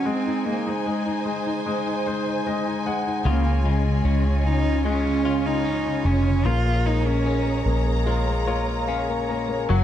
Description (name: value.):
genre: pop.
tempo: 75 BPM.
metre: 4/4.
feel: straight.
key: unclear.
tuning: A4 = 440 Hz.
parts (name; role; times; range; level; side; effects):
warm cello; melody; 0.0-7.9 s; Ab3 to F4; -26 LUFS; right 3 dB; none.
clear baby grand piano; accompaniment; 0.0-9.8 s; Db3 to Bb5; -27 LUFS; left 3 dB; none.
rich studio string section; sustained chords; 0.0-9.8 s; Gb3 to Bb5; -30 LUFS; right 1 dB; none.
direct-recorded clean electric guitar; arpeggios; 3.3-9.8 s; Bb2 to F4; -29 LUFS; left 6 dB; ping-pong delay.
vintage muted fingered electric bass; bass; 3.3-9.8 s; F1 to Db2; -23 LUFS; equal; none.
room: light reverb, studio reverb.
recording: dark, warm production.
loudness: -20 LUFS.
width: side -10 dB against mid.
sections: 0.0-9.7 A section.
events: grand piano fill 1.7-3.3, 8.1-9.7.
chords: 0.0 Ab; 3.3 Db; 6.5 Bbm7.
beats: | 0.05 0.85 1.66 2.46 | 3.25 4.05 4.85 5.65 | 6.45 7.26 8.06 8.88 | 9.70.